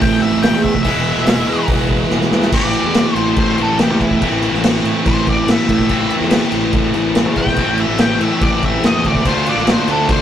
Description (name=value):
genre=blues rock power trio and southern rock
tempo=143 BPM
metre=4/4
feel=straight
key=A minor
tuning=A4 = 441 Hz
part: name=octave-fuzz lead guitar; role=melody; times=0.0-10.2 s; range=E4 to G5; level=-20 LUFS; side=left 2 dB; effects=distortion
part: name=sludgy distorted guitar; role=riff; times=0.0-10.2 s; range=A2 to F4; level=-16 LUFS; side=equal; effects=overdrive
part: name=fuzz fingered electric bass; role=bass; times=0.0-10.2 s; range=E1 to D3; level=-21 LUFS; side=equal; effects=overdrive
part: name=vintage drum kit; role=drums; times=0.0-10.2 s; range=crash cymbal, hi-hat, kick drum, snare drum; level=-17 LUFS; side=equal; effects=none
room=moderate booth ambience, RT60 0.2 s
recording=rough rehearsal-room recording, tube saturation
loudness=-13 LUFS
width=side -10 dB against mid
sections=0.0-2.5 A section; 2.5-10.2 A section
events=lead electric guitar solo 0.0-2.5, 2.5-10.2; drum fill 2.1-2.5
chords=0.0 Am; 0.9 E; 2.5 Am; 9.3 Dm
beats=0.03 0.44 | 0.86 1.28 1.70 2.12 | 2.54 2.96 3.38 3.80 | 4.22 4.64 5.06 5.48 | 5.90 6.32 6.74 7.16 | 7.58 8.00 8.42 8.84 | 9.26 9.68 10.10